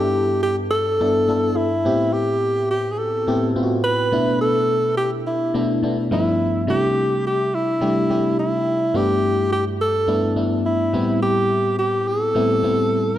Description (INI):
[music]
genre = pop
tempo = 106 BPM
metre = 4/4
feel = straight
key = G major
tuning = A4 = 440 Hz
[part]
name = warm alto saxophone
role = melody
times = 0.0-13.2 s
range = E4 to B4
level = -20 LUFS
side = equal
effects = none
[part]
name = FM electric piano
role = accompaniment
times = 0.0-13.2 s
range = G2 to A4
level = -21 LUFS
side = left 1 dB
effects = lush chorus
[sound]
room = moderate lush hall reverb, RT60 2.5 s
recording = dark, warm production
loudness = -17 LUFS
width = side -12 dB against mid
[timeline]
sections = 0.0-13.2 A section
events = none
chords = 0.0 G69; 1.9 Am7; 4.1 G69/B (rootless); 6.1 G13; 6.7 C6; 8.9 G69; 10.9 Am7